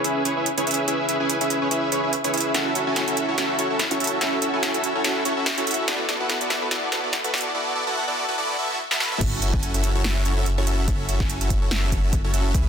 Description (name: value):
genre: future bass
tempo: 144 BPM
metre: 4/4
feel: swing 55% on 16ths, half-time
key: F# minor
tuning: A4 = 440 Hz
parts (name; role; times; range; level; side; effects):
- dense compressed supersaw; riff; 0.0-12.7 s; B3 to G#5; -23 LUFS; equal; sidechain pumping, low-pass filter, digital delay
- big-room dance drum kit; drums; 0.0-12.6 s; crash cymbal, hi-hat, snare drum, toms; -26 LUFS; right 1 dB; high-pass filter on hats, high-pass filter on snare, high-pass filter on toms, high-pass filter on cymbals, high-pass filter on room
- saturated sub bass; bass; 9.2-12.7 s; F#1 to C#2; -23 LUFS; equal; tube saturation, sidechain pumping
- electronic kick drum; drums; 9.2-12.6 s; none; -24 LUFS; equal; none
room: moderate lush hall reverb, RT60 1.9 s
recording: dense, heavily limited modern master, high-pass filter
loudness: -20 LUFS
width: side -7 dB against mid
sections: 0.0-9.2 A section; 9.2-12.7 B section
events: build-up 0.0-9.2; filter sweep on supersaw synth 0.0-9.2; drum fill 2.5-7.5, 8.9-9.2; drop 9.2-12.7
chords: 0.0 C#m7; 2.5 F#m7; 5.9 D69; 9.2 F#m7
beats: 0.04 0.46 | 0.88 1.29 1.71 2.13 | 2.54 2.96 3.38 3.79 | 4.21 4.63 5.04 5.46 | 5.88 6.29 6.71 7.13 | 7.54 7.96 8.38 8.79 | 9.21 9.63 10.04 10.46 | 10.88 11.29 11.71 12.13 | 12.54